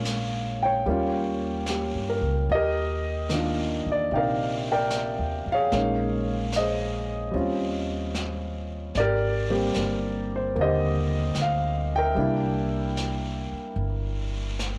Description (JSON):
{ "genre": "jazz ballad", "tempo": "74 BPM", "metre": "4/4", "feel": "swing 69% on 8ths", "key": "Eb major", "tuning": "A4 = 440 Hz", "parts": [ { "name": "warm concert grand piano", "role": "accompaniment", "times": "0.0-14.8 s", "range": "C3 to G5", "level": "-28 LUFS", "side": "equal", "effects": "cassette tape" }, { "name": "upright bass", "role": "bass", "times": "0.0-14.8 s", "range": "G1 to G2", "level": "-33 LUFS", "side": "equal", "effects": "none" }, { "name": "jazz brush drum kit", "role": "drums", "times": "0.1-14.8 s", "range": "brushed snare drum, hi-hat, snare drum", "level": "-40 LUFS", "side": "equal", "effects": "cassette tape" } ], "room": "light reverb", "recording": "home recording on cassette, lossy compression artefacts", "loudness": "-26 LUFS", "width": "mono", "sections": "0.0-2.5 A section; 2.5-14.8 B section", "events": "none", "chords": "0.0 Bbm7; 0.9 Eb7; 2.5 Ebmaj9; 5.7 Bbm11; 7.3 Eb13; 8.9 Abmaj9; 12.2 C7" }